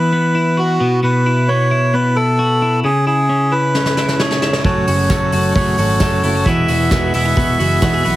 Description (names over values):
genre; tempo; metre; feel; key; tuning
jangly indie pop; 132 BPM; 4/4; straight; E major; A4 = 440 Hz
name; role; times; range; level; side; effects
melodica; melody; 0.0-8.2 s; F#4 to E5; -18 LUFS; right 2 dB; none
twelve-string electric guitar; arpeggios; 0.0-8.2 s; F#2 to A4; -17 LUFS; left 1 dB; none
soft brush drum kit; drums; 3.7-8.2 s; hi-hat, kick drum, snare drum; -19 LUFS; equal; none
combo organ; accompaniment; 4.6-8.2 s; A3 to B4; -23 LUFS; left 4 dB; none
fingerpicked steel-string acoustic guitar; accompaniment; 4.6-8.2 s; E3 to F#4; -23 LUFS; right 4 dB; none
vintage muted picked electric bass; bass; 4.6-8.2 s; E1 to B1; -19 LUFS; right 1 dB; none
tambourine; percussion; 4.9-8.2 s; none; -35 LUFS; right 8 dB; none
room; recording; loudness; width
light reverb, studio reverb; heavily compressed radio sound, multiband compression; -13 LUFS; side -15 dB against mid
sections
0.0-8.2 A section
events
drum fill 3.7-4.7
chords
0.0 Esus2; 0.8 Bsus4; 2.8 C#m; 4.7 F#m; 6.5 Eadd9